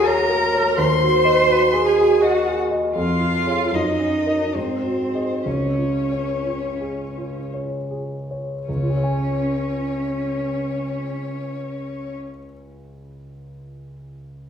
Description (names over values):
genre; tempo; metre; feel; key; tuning
classical, slow romantic movement for piano trio; 50-84 BPM; 3/4; rubato; Db major; A4 = 438 Hz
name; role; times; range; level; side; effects
rich violin; melody; 0.0-12.1 s; C5 to C6; -28 LUFS; left 7 dB; none
warm cello; second line; 0.0-12.2 s; C4 to C5; -22 LUFS; right 2 dB; none
dark baby grand piano; accompaniment; 0.0-14.5 s; Db2 to Ab5; -23 LUFS; equal; none
room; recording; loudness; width
wet recital hall reverb, RT60 1.4 s; recorded in a church or concert hall; -19 LUFS; side -7 dB against mid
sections
0.0-8.7 A section; 8.7-12.1 B section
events
slowing down 1.9-8.7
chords
0.0 Ebm7; 0.8 Ab7/Eb; 3.0 Db/F; 3.7 Ebm7/Gb; 4.5 Ab7; 5.5 Db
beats
0.06 | 0.78 1.49 2.22 | 2.96 3.73 4.55 | 5.45 6.45 7.51 | 8.67 9.80 10.96